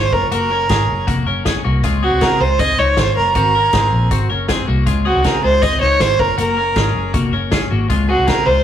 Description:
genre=jangly indie pop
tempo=158 BPM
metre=4/4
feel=straight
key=Db major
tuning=A4 = 440 Hz
part: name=warm violin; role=melody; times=0.0-8.6 s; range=Gb4 to Eb5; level=-15 LUFS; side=right 2 dB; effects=slapback echo
part: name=twelve-string electric guitar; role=arpeggios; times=0.0-8.6 s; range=Ab3 to Db5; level=-21 LUFS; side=left 5 dB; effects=spring reverb
part: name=vintage muted picked electric bass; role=bass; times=0.0-8.6 s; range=F1 to Db3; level=-19 LUFS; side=equal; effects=none
part: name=vintage drum kit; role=drums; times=0.1-8.4 s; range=hi-hat, kick drum, snare drum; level=-21 LUFS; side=equal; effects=none
room=wet small room reverb, RT60 0.5 s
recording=rough rehearsal-room recording, warm saturation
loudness=-13 LUFS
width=side -10 dB against mid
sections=0.0-8.6 A section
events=none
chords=0.1 Gbmaj7; 1.8 Dbmaj7; 3.4 Ab7; 4.9 Dbmaj7; 6.2 Gbmaj7; 7.9 Dbmaj7

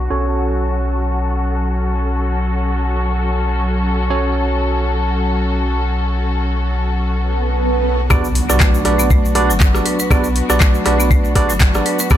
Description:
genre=afro house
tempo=120 BPM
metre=4/4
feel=swing 56% on 16ths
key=B minor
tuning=A4 = 440 Hz
part: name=muted studio string section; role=sustained chords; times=0.0-12.2 s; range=F#3 to A4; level=-22 LUFS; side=left 2 dB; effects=sidechain pumping, low-pass filter
part: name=bell-like tine electric piano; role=stabs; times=0.0-12.2 s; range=C#4 to D5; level=-22 LUFS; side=right 4 dB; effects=sidechain pumping, ping-pong delay
part: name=warm sub bass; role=bass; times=0.0-12.2 s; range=F#1 to B1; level=-19 LUFS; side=equal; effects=sidechain pumping
part: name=swell and impact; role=sound effects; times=7.3-10.1 s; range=none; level=-24 LUFS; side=right 2 dB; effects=none
part: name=marimba with hard mallets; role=arpeggios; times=8.1-12.2 s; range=F#3 to B4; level=-20 LUFS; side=left 2 dB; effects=sidechain pumping, ping-pong delay
part: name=deep house drum kit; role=drums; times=8.1-12.2 s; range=handclaps, hi-hat, rim click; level=-21 LUFS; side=left 1 dB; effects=overdrive, low-pass filter on cymbals, low-pass filter on snare, low-pass filter on hats, low-pass filter on room
part: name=electronic kick drum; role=drums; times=8.1-12.2 s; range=none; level=-13 LUFS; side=equal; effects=none
part: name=cabasa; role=percussion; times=8.1-12.2 s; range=none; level=-25 LUFS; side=left 1 dB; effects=none
room=light reverb, digital ambience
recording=low-pass filter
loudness=-14 LUFS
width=side -11 dB against mid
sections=0.0-8.1 A section; 8.1-12.2 B section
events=filter sweep on string section 0.0-8.1; filter sweep 0.0-8.1; swell 7.3-8.1; drop 8.1-12.2; impact 8.1-10.1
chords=0.1 F#m/B; 8.1 Bm

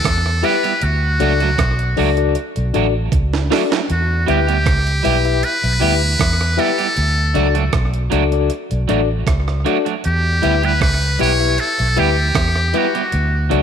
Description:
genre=roots reggae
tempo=78 BPM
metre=4/4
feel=straight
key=E dorian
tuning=A4 = 440 Hz
part: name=trumpet with metal mute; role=melody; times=0.0-13.5 s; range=F#4 to C#5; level=-20 LUFS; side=equal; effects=tape echo
part: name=vintage muted fingered electric bass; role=bass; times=0.0-13.6 s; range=A1 to E2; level=-18 LUFS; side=equal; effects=none
part: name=breakbeat sampler-style drum kit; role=drums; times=0.0-13.6 s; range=hi-hat, kick drum, rim click, snare drum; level=-22 LUFS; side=right 3 dB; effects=slapback echo
part: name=electric guitar at the edge of break-up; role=accompaniment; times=0.4-13.6 s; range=F#3 to G4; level=-23 LUFS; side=right 11 dB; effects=tape echo
part: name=mellow reed electric piano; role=stabs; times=0.4-13.6 s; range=D4 to E5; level=-22 LUFS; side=left 10 dB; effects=fast tremolo
room=light reverb, digital ambience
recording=1960s-style stereo with parts hard left and right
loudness=-14 LUFS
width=side -8 dB against mid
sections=0.0-13.6 A section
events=drum fill 3.1-3.9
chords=0.0 Em; 0.8 D; 3.9 Em; 7.0 D; 10.0 Em; 13.1 D

